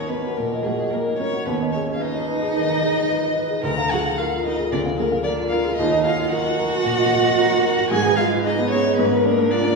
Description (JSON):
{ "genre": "quick classical-period movement for piano trio", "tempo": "112 BPM", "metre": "4/4", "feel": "rubato", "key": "Eb minor", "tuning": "A4 = 440 Hz", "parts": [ { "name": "dark violin", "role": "melody", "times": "0.0-9.8 s", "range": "Ab4 to Bb5", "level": "-23 LUFS", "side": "left 3 dB", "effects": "none" }, { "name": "dark grand piano", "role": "accompaniment", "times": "0.0-9.8 s", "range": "D2 to F5", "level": "-22 LUFS", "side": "right 1 dB", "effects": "none" }, { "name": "dark cello", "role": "second line", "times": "0.1-9.8 s", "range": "Ab3 to Bb4", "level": "-23 LUFS", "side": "right 4 dB", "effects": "none" } ], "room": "wet scoring stage reverb, RT60 1.6 s", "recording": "heard from further back in the room, studio ambience", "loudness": "-18 LUFS", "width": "side -3 dB against mid", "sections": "0.0-9.8 A section", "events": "none", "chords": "0.0 Ebm; 1.5 Abm/Eb; 3.6 Bb7/D; 5.8 Ebm; 7.9 Abm; 9.0 Bb7/Ab", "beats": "0.38 0.93 | 1.47 2.01 2.56 3.09 | 3.64 4.18 4.72 5.25 | 5.79 6.33 6.86 7.39 | 7.92 8.46 8.99 9.52" }